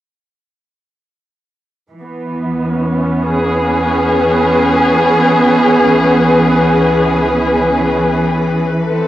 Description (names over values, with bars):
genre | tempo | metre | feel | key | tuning
ambient | free time | none | none | E major | A4 = 440 Hz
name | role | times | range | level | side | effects
muted studio string section | sustained chords | 1.9-9.1 s | E3 to B4 | -11 LUFS | equal | cassette tape
deep rumbling drone | bass | 2.4-9.1 s | A1 to E2 | -29 LUFS | equal | built-in reverb
room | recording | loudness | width
wet booth ambience, RT60 0.3 s | home recording on cassette | -10 LUFS | side -13 dB against mid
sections
1.9-9.1 A section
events
none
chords
1.9 E6; 5.3 C#m7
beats
free time